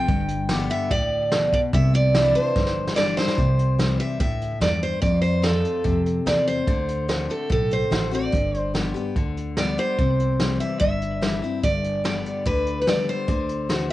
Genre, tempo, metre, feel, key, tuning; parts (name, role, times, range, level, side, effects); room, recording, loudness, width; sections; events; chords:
honky-tonk and classic country; 145 BPM; 4/4; straight; C major; A4 = 441 Hz
picked steel-string acoustic guitar; melody; 0.0-13.9 s; A4 to G5; -24 LUFS; right 1 dB; cassette tape
picked steel-string acoustic guitar; accompaniment; 0.0-13.9 s; F2 to G4; -27 LUFS; left 5 dB; cassette tape
upright bass; bass; 0.1-13.9 s; G1 to F2; -25 LUFS; right 1 dB
vintage brush drum kit; drums; 0.1-13.9 s; hi-hat, kick drum, snare drum; -26 LUFS; right 1 dB; cassette tape
moderate small room reverb, RT60 0.5 s; home recording on cassette, nothing above 10.3 kHz; -20 LUFS; side -15 dB against mid
0.0-3.4 A section; 3.4-13.9 B section
drum fill 2.5-3.4
0.1 G; 1.7 Cadd9; 3.4 C; 5.0 F; 6.7 D7; 8.3 G; 10.0 C; 11.6 G; 13.3 D7